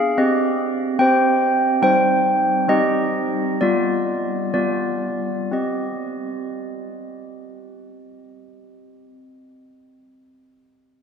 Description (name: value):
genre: classical, tune for handbells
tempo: 58-76 BPM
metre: 4/4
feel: straight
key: C minor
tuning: A4 = 440 Hz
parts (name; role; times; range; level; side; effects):
- handbells; solo; 0.0-9.1 s; G3 to G5; -18 LUFS; equal; none
room: wet cathedral reverb, RT60 5.0 s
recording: heard from further back in the room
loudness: -17 LUFS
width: side -6 dB against mid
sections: 0.0-5.5 A section; 5.5-9.6 B section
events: slowing down 0.0-5.5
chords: 0.2 Cm; 1.8 Cm/G; 3.6 G7; 5.5 Cm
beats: 0.19 0.99 | 1.82 2.68 3.58 4.53 | 5.53 6.54 7.56 8.58